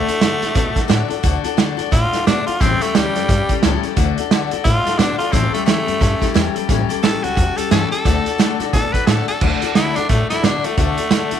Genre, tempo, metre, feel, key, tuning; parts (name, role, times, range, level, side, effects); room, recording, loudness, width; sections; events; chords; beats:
rockabilly; 176 BPM; 4/4; swing 60% on 8ths; D major; A4 = 440 Hz
raspy tenor saxophone; melody; 0.0-11.4 s; G3 to B4; -21 LUFS; equal
picked steel-string acoustic guitar; accompaniment; 0.0-11.4 s; A2 to A4; -21 LUFS; left 12 dB
upright bass; bass; 0.0-11.4 s; A1 to B2; -22 LUFS; equal
vintage drum kit; drums; 0.1-11.4 s; crash cymbal, hi-hat, kick drum, snare drum; -18 LUFS; right 4 dB
moderate spring reverb, RT60 2.1 s; 1960s-style stereo; -15 LUFS; side -9 dB against mid
0.0-9.4 A section; 9.4-11.4 A section
0.0 D; 2.6 A7; 4.0 D; 5.3 A7; 8.1 D
0.21 0.56 0.90 | 1.24 1.58 1.92 2.26 | 2.60 2.94 3.28 3.62 | 3.96 4.30 4.65 4.99 | 5.33 5.67 6.01 6.35 | 6.69 7.03 7.37 7.71 | 8.05 8.39 8.73 9.07 | 9.41 9.75 10.09 10.43 | 10.77 11.11